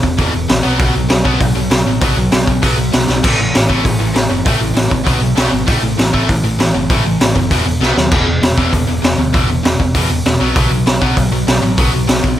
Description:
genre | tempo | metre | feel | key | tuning
punk rock | 197 BPM | 4/4 | straight | unclear | A4 = 441 Hz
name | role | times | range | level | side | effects
distorted electric guitar | riff | 0.0-12.4 s | E2 to B3 | -17 LUFS | equal | overdrive
hollow-body short-scale picked electric bass | bass | 0.0-12.3 s | E1 to D#2 | -18 LUFS | equal | none
raw garage drum kit | drums | 0.0-12.3 s | crash cymbal, hi-hat, kick drum, snare drum | -14 LUFS | equal | none
room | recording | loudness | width
little or no reverb | none | -11 LUFS | side -12 dB against mid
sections
0.0-12.4 A section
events
drum fill 3.1, 7.8-8.1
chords
0.0 E5; 0.6 B5; 3.2 A5; 5.1 B5; 5.7 A5; 7.5 E5; 7.8 B5; 8.1 E5; 10.4 B5

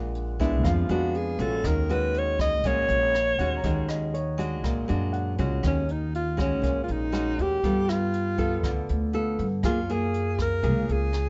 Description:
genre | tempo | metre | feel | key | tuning
bossa nova | 120 BPM | 4/4 | straight | Eb minor | A4 = 437 Hz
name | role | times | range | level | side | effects
nylon-string guitar | accompaniment | 0.0-11.3 s | Bb2 to A4 | -33 LUFS | equal | none
warm grand piano | accompaniment | 0.0-5.8 s | Db5 to Bb5 | -40 LUFS | equal | none
upright bass | bass | 0.0-11.3 s | Bb1 to G2 | -30 LUFS | equal | none
jazz brush drum kit | drums | 0.1-11.2 s | hi-hat, kick drum, rim click | -34 LUFS | equal | none
breathy alto saxophone | melody | 0.4-11.3 s | Db4 to Eb5 | -29 LUFS | equal | plate reverb
room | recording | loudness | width
light reverb | dark, warm production, nothing above 7.8 kHz | -26 LUFS | mono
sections
0.0-5.6 A section; 5.6-11.3 B section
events
alto saxophone solo 0.0-5.6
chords
0.0 Bb7b9; 1.6 Ebm7; 4.6 Bb7alt; 5.6 Ebm7; 7.6 G9; 9.6 Gbmaj9

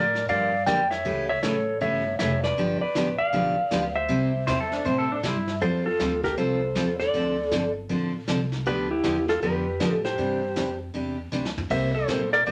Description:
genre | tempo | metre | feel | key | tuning
country, western swing | 158 BPM | 4/4 | swing 64% on 8ths | F major | A4 = 440 Hz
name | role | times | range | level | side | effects
clean lap steel guitar | melody | 0.0-12.5 s | E4 to G5 | -27 LUFS | equal | none
picked steel-string acoustic guitar | accompaniment | 0.0-12.5 s | C3 to A4 | -30 LUFS | equal | none
upright bass | bass | 0.0-12.5 s | F1 to A2 | -35 LUFS | equal | none
vintage brush drum kit | drums | 0.2-12.5 s | brushed snare drum, crash cymbal, hi-hat, kick drum, snare drum, toms | -37 LUFS | equal | none
pedal steel guitar | second line | 4.5-5.5 s | D4 to C5 | -30 LUFS | equal | none
room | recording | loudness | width
wet studio reverb, RT60 0.5 s | none | -25 LUFS | mono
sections
0.0-5.6 A section; 5.6-12.5 B section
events
drum fill 11.3-11.7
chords
0.0 Bb6; 1.1 A7; 2.6 G7; 4.1 C; 5.6 Fadd9; 7.1 Dm7; 8.7 G7/D; 10.2 Cadd9; 11.7 C7

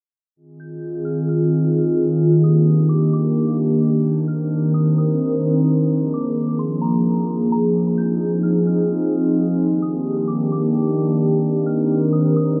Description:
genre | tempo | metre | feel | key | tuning
hip hop | 130 BPM | 4/4 | half-time | F dorian | A4 = 439 Hz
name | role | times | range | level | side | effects
warbly tape-like pad | sustained chords | 0.7-12.6 s | Eb3 to Bb4 | -19 LUFS | equal | chorus, built-in reverb
drifting glass-harmonics texture | texture | 0.9-12.6 s | D4 to Bb5 | -32 LUFS | equal | chorus, built-in reverb
soft synth bell | melody | 0.6-12.6 s | Bb5 to G6 | -42 LUFS | equal | chorus, phaser, low-pass filter, tape echo
room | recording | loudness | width
moderate huge ambient reverb, RT60 4.4 s | dark, warm production, low-pass filter | -19 LUFS | mono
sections
0.4-12.6 A section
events
filter sweep 0.4-12.6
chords
0.4 Fm7; 2.2 Ebmaj7; 4.1 Cm9; 5.9 Bb7; 7.7 Fm7; 9.6 Ebmaj7; 11.4 Cm9

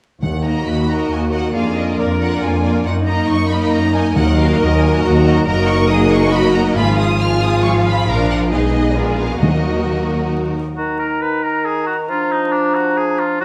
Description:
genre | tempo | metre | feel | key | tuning
quick classical-period movement for symphony orchestra | 137 BPM | 3/4 | straight | Eb minor | A4 = 439 Hz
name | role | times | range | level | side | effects
rich studio violin section | melody | 0.2-10.3 s | D5 to F6 | -27 LUFS | equal | none
mellow French horn section | sustained chords | 0.2-10.5 s | F3 to F4 | -23 LUFS | equal | none
clear studio double bass section | bass | 0.2-10.6 s | Gb1 to Gb2 | -21 LUFS | equal | none
timpani | percussion | 0.2-0.8, 4.2-4.8, 9.4-10.1 s | Eb3 | -24 LUFS | equal | none
rich studio violin section | second line | 0.4-10.6 s | F4 to F5 | -26 LUFS | equal | none
rich studio viola section | accompaniment | 0.4-10.6 s | F3 to Gb4 | -25 LUFS | equal | none
rich studio cello section | bass | 0.7-10.6 s | Eb4 to Bb4 | -24 LUFS | equal | none
hollow concert flute | second line | 10.8-13.4 s | Bb5 | -26 LUFS | equal | none
mellow clarinet | second line | 10.8-13.4 s | D4 to Eb4 | -26 LUFS | equal | none
warm oboe | second line | 10.8-13.4 s | D4 to Cb5 | -23 LUFS | equal | none
mellow bassoon | accompaniment | 10.8-13.4 s | Eb3 to Gb3 | -24 LUFS | equal | none
room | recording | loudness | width
moderate scoring stage reverb, RT60 2.2 s | vinyl crackle | -16 LUFS | mono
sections
0.2-10.8 A section; 10.8-13.4 A section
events
none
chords
0.2 Ebm; 1.6 Bb7/F; 2.9 Ebm/Gb; 4.2 Ebm; 5.5 Ebm/Gb; 6.8 Abm6; 8.1 Bb; 8.5 Abm/Cb; 9.0 Bb7b9; 9.4 Ebm; 10.8 Eb5; 12.1 Bb/F

